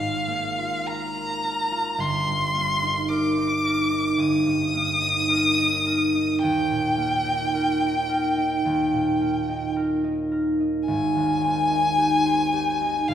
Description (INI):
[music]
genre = classical, romantic duo for violin and harp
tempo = 54 BPM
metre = 4/4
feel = rubato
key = Eb major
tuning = A4 = 439 Hz
[part]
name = clear violin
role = melody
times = 0.0-13.1 s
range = F5 to Eb6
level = -23 LUFS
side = left 1 dB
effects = none
[part]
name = concert harp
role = accompaniment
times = 0.0-13.1 s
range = G1 to C5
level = -24 LUFS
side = right 1 dB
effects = none
[sound]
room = wet scoring stage reverb, RT60 1.8 s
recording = heard from further back in the room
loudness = -20 LUFS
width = side -9 dB against mid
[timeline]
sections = 0.0-13.1 A section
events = none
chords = 0.0 Bb7(no3)/Ab; 2.0 Eb/G; 6.4 Eb; 10.9 Abmaj7